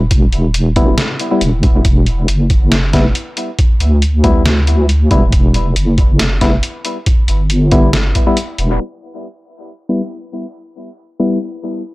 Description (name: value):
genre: deep dubstep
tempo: 138 BPM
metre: 4/4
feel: swing 53% on 16ths, half-time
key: E minor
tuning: A4 = 440 Hz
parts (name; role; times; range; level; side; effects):
- deep soft wobble bass; bass; 0.0-8.8 s; E1 to D2; -13 LUFS; equal; chorus
- electronic kick drum; drums; 0.1-8.2 s; none; -12 LUFS; equal; small room ambience
- trip hop sampler-style drum kit; drums; 0.1-8.7 s; hi-hat, snare drum; -19 LUFS; equal; small room ambience
- percussive organ stab; stabs; 0.8-11.4 s; G3 to E4; -18 LUFS; left 2 dB; chorus, dub echo
room: digital ambience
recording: dry, gritty hardware recording, transformer saturation, low-pass filter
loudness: -11 LUFS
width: side -20 dB against mid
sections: 0.0-8.8 A section; 8.8-11.9 B section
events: break 8.4-8.8; filter sweep on synth stab 8.8-11.9; filter sweep 8.8-11.9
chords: 0.0 Em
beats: | 0.11 0.54 0.98 1.41 | 1.85 2.28 2.72 3.15 | 3.59 4.02 4.46 4.89 | 5.33 5.76 6.20 6.63 | 7.07 7.50 7.93 8.37 | 8.80 9.24 9.67 10.11 | 10.54 10.98